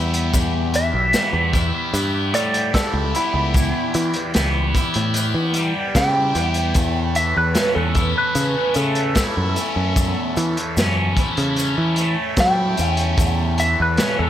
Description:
psychedelic rock; 75 BPM; 4/4; straight; E dorian; A4 = 439 Hz
combo organ; sustained chords; 0.0-14.3 s; G4 to B5; -32 LUFS; right 5 dB
cranked stack guitar; riff; 0.0-14.3 s; E2 to E4; -23 LUFS; left 2 dB; overdrive, phaser
picked electric bass; bass; 0.0-14.3 s; B1 to F#3; -21 LUFS; equal
crunchy breakbeat drum kit; drums; 0.1-14.2 s; hi-hat, kick drum, snare drum; -22 LUFS; equal; analog delay
tube shaker; percussion; 0.3-14.2 s; -34 LUFS; left 4 dB
lightly driven lead guitar; melody; 0.8-14.3 s; E4 to G5; -22 LUFS; equal; wah, analog delay
light reverb, studio reverb; echo-heavy mix; -17 LUFS; side -11 dB against mid
0.0-14.3 A section
lead electric guitar solo 0.0-14.3
0.0 Em; 6.8 Aadd9/E
| 0.35 1.15 1.95 2.75 | 3.56 4.36 5.16 5.96 | 6.77 7.57 8.37 9.17 | 9.98 10.78 11.58 12.39 | 13.19 13.99

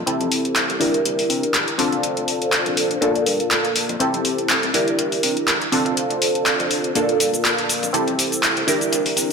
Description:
filtered disco house; 122 BPM; 4/4; swing 55% on 16ths; A4 = 442 Hz
funky polysynth comp; accompaniment; 0.0-9.3 s; Bb3 to Bb4; -20 LUFS; equal; chorus, phaser, low-pass filter
fingered electric bass; bass; 0.0-9.3 s; F1 to C3; -33 LUFS; equal; high-pass filter, low-pass filter
house drum kit; drums; 0.1-9.3 s; handclaps, hi-hat, shaker; -21 LUFS; left 1 dB; high-pass filter on hats, high-pass filter on snare, high-pass filter on perc, high-pass filter on room
moderate lush hall reverb, RT60 2.2 s; -17 LUFS; side -5 dB against mid
0.0-9.3 A section
build-up 0.0-9.3; filter sweep 0.0-9.3
0.1 Fmaj7 (rootless); 0.8 C7; 1.8 Bbmaj7; 3.0 Gm7; 4.0 Fmaj7 (rootless); 4.7 C7; 5.7 Bbmaj7 (rootless); 7.0 Gm7; 7.9 Fmaj7 (rootless); 8.7 C7
0.07 0.56 | 1.05 1.55 2.04 2.53 | 3.02 3.51 4.00 4.50 | 4.99 5.48 5.97 6.46 | 6.96 7.45 7.94 8.43 | 8.92

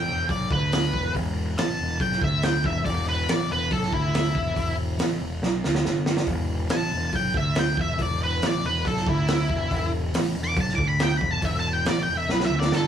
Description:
blues rock power trio and southern rock; 140 BPM; 4/4; straight; E minor; A4 = 439 Hz
octave-fuzz lead guitar; melody; 0.0-12.9 s; E4 to D6; -27 LUFS; left 1 dB; wah, distortion
fuzz fingered electric bass; bass; 0.0-12.9 s; E1 to D2; -26 LUFS; right 1 dB; overdrive
raw garage drum kit; drums; 0.3-12.8 s; hi-hat, kick drum, snare drum; -26 LUFS; right 1 dB
little or no reverb; -22 LUFS; side -9 dB against mid
0.0-12.9 A section
lead electric guitar solo 0.0-12.9; drum fill 5.4-6.3, 12.3-12.9
0.0 E5
0.28 0.71 | 1.14 1.57 1.99 2.42 | 2.85 3.28 3.70 4.13 | 4.56 4.99 5.41 5.84 | 6.27 6.70 7.13 7.56 | 7.98 8.41 8.84 9.27 | 9.70 10.13 10.56 10.99 | 11.42 11.85 12.28 12.71

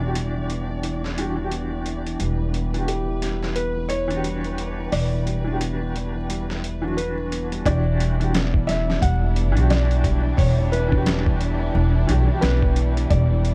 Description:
trip hop; 88 BPM; 4/4; swing 59% on 16ths; E minor; A4 = 435 Hz
clear upright piano; accompaniment; 0.0-13.5 s; E3 to G4; -32 LUFS; equal; tremolo, tape echo
rich studio violin section; sustained chords; 0.0-13.5 s; G3 to D5; -37 LUFS; equal; vintage 12-bit sampler grit, low-pass filter
felt-muted upright piano; arpeggios; 0.0-13.5 s; D3 to B3; -32 LUFS; equal; low-pass filter, tape echo
upright bass; bass; 0.0-13.5 s; E1 to B1; -25 LUFS; equal
wind-like tuned noise texture; texture; 0.0-7.7 s; D4; -42 LUFS; equal
dusty soul sampler-style drum kit; drums; 0.2-13.5 s; hi-hat, kick drum, snare drum; -27 LUFS; equal; overdrive, high-pass filter on hats, high-pass filter on snare, high-pass filter on kick, high-pass filter on room
felt-muted upright piano; melody; 2.9-13.5 s; G4 to F#5; -31 LUFS; equal; tape echo
small room ambience; dark, warm production, vinyl crackle; -22 LUFS; mono
0.0-7.7 A section; 7.7-13.5 B section
filter sweep on felt piano 0.0-7.7
0.0 Em9
0.15 0.83 1.52 | 2.20 2.88 3.56 4.24 | 4.92 5.61 6.29 6.97 | 7.65 8.33 9.02 9.70 | 10.38 11.06 11.74 12.43 | 13.11

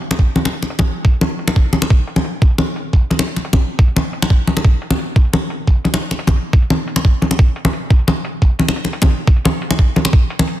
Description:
drum and bass; 175 BPM; 4/4; straight
electronic hi-hat; drums; 0.0-10.5 s; -35 LUFS; equal
congas; percussion; 0.1-10.5 s; -17 LUFS; left 1 dB
electronic kick drum; drums; 0.2-10.2 s; -11 LUFS; equal
light reverb; dense, heavily limited modern master; -13 LUFS; side -14 dB against mid
0.0-10.6 A section
0.02 0.36 0.70 | 1.05 1.39 1.73 2.08 | 2.42 2.76 3.10 3.45 | 3.79 4.13 4.47 4.82 | 5.16 5.50 5.85 6.19 | 6.53 6.88 7.22 7.56 | 7.90 8.25 8.59 8.93 | 9.28 9.62 9.96 10.30

